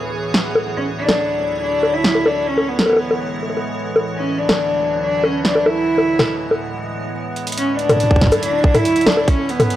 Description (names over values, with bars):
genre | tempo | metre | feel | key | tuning
IDM | 141 BPM | 4/4 | straight | D lydian | A4 = 440 Hz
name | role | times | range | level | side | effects
icy glass pad | sustained chords | 0.0-9.8 s | D2 to C#5 | -25 LUFS | right 1 dB | chorus, built-in reverb
electro analog drum machine | drums | 0.3-9.8 s | bongos, cabasa, hi-hat, snare drum, toms | -17 LUFS | equal | none
rich cello | melody | 0.8-9.8 s | B3 to E4 | -19 LUFS | equal | analog delay
electronic kick drum | drums | 8.1-9.4 s | none | -14 LUFS | equal | none
room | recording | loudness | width
light reverb | dry, gritty hardware recording | -15 LUFS | side -13 dB against mid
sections
0.0-7.6 A section; 7.6-9.8 B section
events
break 6.7-7.6; drum fill 7.4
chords
0.0 Amaj9; 0.8 Dmaj9; 2.5 Amaj9; 4.2 Dmaj9; 5.9 Amaj9; 7.6 Dmaj9